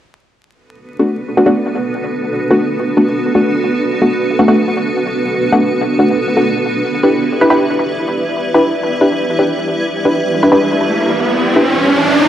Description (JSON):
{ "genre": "drum and bass", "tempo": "159 BPM", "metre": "4/4", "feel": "straight", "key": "unclear", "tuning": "A4 = 440 Hz", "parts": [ { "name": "granular cloud pad", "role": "sustained chords", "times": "1.1-12.3 s", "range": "B3 to E5", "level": "-16 LUFS", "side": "right 1 dB", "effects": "built-in reverb, vintage 12-bit sampler grit" }, { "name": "filtered dub chord stab", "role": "stabs", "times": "1.0-11.7 s", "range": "A3 to B4", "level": "-14 LUFS", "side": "left 1 dB", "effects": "chorus, dub echo" }, { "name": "riser", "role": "sound effects", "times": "10.3-12.3 s", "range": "none", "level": "-14 LUFS", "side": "right 1 dB", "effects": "none" } ], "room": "moderate echo chamber reverb, RT60 1.5 s", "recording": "vinyl crackle", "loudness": "-12 LUFS", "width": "side -11 dB against mid", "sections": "0.5-12.3 A section", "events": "riser 10.3-12.3", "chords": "0.5 Bm7; 6.6 Em7" }